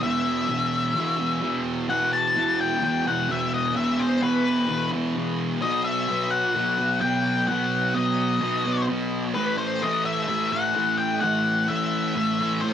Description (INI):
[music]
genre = rock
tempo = 129 BPM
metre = 4/4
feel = straight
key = E harmonic minor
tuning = A4 = 441 Hz
[part]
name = octave-fuzz lead guitar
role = melody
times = 0.0-12.7 s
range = B4 to A5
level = -24 LUFS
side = left 4 dB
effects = distortion, analog delay
[part]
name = thick fuzz guitar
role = riff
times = 0.0-12.7 s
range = E2 to B3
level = -24 LUFS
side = right 2 dB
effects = distortion, lush chorus
[sound]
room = moderate small room reverb, RT60 0.6 s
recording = home recording on cassette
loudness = -21 LUFS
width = side -9 dB against mid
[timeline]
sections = 0.0-12.7 A section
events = none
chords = 0.0 E5; 5.6 B; 9.4 A5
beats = | 0.03 0.50 0.96 1.43 | 1.90 2.36 2.83 3.29 | 3.76 4.22 4.69 5.16 | 5.62 6.09 6.56 7.02 | 7.49 7.96 8.42 8.89 | 9.36 9.82 10.29 10.76 | 11.22 11.69 12.15 12.62